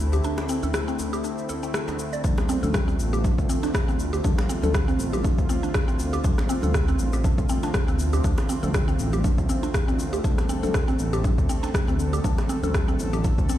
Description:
afro house; 120 BPM; 4/4; swing 56% on 16ths; D minor; A4 = 441 Hz
warm analog pad; sustained chords; 0.0-13.6 s; D3 to A4; -31 LUFS; equal; chorus, sidechain pumping
dark detuned saw bass; bass; 0.0-13.5 s; A1 to D2; -26 LUFS; equal; sidechain pumping
mallet-like synth pluck; arpeggios; 0.1-13.6 s; C4 to D5; -30 LUFS; equal; chorus, phaser, cassette tape, sidechain pumping, tape echo
electronic cabasa and rim click; drums; 0.1-13.6 s; -32 LUFS; left 1 dB
djembe; percussion; 0.1-13.6 s; -33 LUFS; right 2 dB
electronic kick drum; drums; 2.2-13.5 s; -24 LUFS; equal; overdrive
congas; percussion; 2.2-13.6 s; -34 LUFS; left 3 dB
digital ambience; played on a big sound system in a bare room, stone room reverb; -21 LUFS; side -12 dB against mid
0.0-13.6 A section
break 0.2-2.2
0.0 Dm7

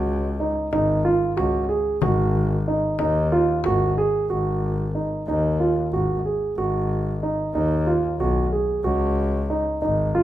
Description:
contemporary instrumental, chamber music in an uneven meter; 185 BPM (eighths); 7/8; straight; A4 = 438 Hz
dark concert grand piano; arpeggios; 0.0-10.2 s; D#4 to G#4; -22 LUFS; right 2 dB
clear double bass; bass; 0.0-10.2 s; G#1 to D#2; -24 LUFS; left 1 dB
frame drum; percussion; 0.7-4.1 s; -29 LUFS; left 6 dB
light reverb; minimal, uncompressed stereo recording; -20 LUFS; side -13 dB against mid
0.0-4.3 A section; 4.3-10.2 B section
0.0 C#sus4; 2.0 G#5; 4.3 G#7(no3); 8.8 C#sus4

